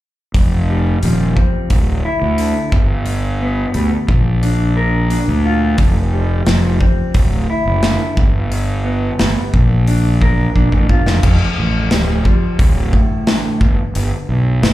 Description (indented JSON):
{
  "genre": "quiet-loud alternative rock",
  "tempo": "88 BPM",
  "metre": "4/4",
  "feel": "straight",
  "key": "unclear",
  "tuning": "A4 = 440 Hz",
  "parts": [
    { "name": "fuzz fingered electric bass", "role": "bass", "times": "0.3-14.7 s", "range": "D1 to D2", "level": "-16 LUFS", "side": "equal", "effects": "overdrive" },
    { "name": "big rock drum kit", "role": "drums", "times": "0.3-14.7 s", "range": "crash cymbal, hi-hat, kick drum, snare drum", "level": "-16 LUFS", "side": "equal", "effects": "none" },
    { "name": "mellow electric guitar", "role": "arpeggios", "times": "0.4-14.7 s", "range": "D2 to Bb4", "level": "-20 LUFS", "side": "equal", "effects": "harmonic tremolo, slapback echo" }
  ],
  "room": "little or no reverb",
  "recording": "live gig heard through the venue's PA, club reverb",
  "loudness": "-13 LUFS",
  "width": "side -15 dB against mid",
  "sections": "0.3-11.2 A section; 11.2-14.7 B section",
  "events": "drum fill 10.6-11.2",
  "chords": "0.3 Fsus2; 1.7 Dsus2; 2.7 G; 4.1 Bb; 5.8 Fsus2; 7.2 Dsus2; 8.2 G; 9.5 Bb; 11.2 Fadd9; 12.6 D5; 13.6 G"
}